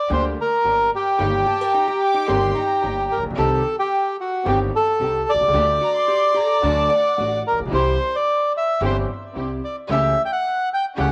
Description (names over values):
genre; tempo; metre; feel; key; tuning
tango; 110 BPM; 4/4; rubato; unclear; A4 = 440 Hz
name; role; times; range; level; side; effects
bandoneon; melody; 0.0-11.1 s; F#4 to G5; -21 LUFS; equal; cassette tape
clear upright piano; accompaniment; 0.1-11.1 s; G1 to G4; -29 LUFS; equal; cassette tape
warm studio string section; stabs; 0.1-11.1 s; A3 to G4; -33 LUFS; equal; cassette tape
upright bass; bass; 0.1-11.1 s; G1 to D2; -29 LUFS; equal; none
archtop guitar, miked and amplified; second line; 1.5-7.3 s; C4 to D5; -32 LUFS; equal; cassette tape
warm studio violin section; second line; 1.5-7.3 s; F#5 to D6; -33 LUFS; equal; cassette tape
room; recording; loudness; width
moderate spring reverb, RT60 1.3 s, small room ambience; home recording on cassette; -20 LUFS; mono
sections
0.0-11.1 A section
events
none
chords
0.0 Gm; 1.2 Eb/G; 3.4 Cm; 5.5 Dsus4; 6.6 D; 7.7 C; 9.9 A7/C#